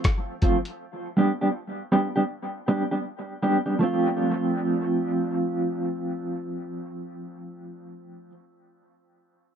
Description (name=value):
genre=dub reggae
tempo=80 BPM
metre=4/4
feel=swing 62% on 16ths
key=unclear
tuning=A4 = 440 Hz
part: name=lo-fi sampler-style drum kit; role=drums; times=0.0-0.8 s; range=hi-hat, kick drum, rim click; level=-22 LUFS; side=left 1 dB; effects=none
part: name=mellow electric guitar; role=accompaniment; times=0.4-8.3 s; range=F3 to G4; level=-24 LUFS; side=right 1 dB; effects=tremolo, dub echo
room=light reverb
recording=dry, close 1970s-style studio recording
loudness=-23 LUFS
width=side -8 dB against mid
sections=0.0-3.8 A section; 3.8-6.8 B section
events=none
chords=0.0 F; 0.8 G; 3.8 F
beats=0.04 | 0.80 1.54 2.30 3.05 | 3.80 4.55 5.30 6.05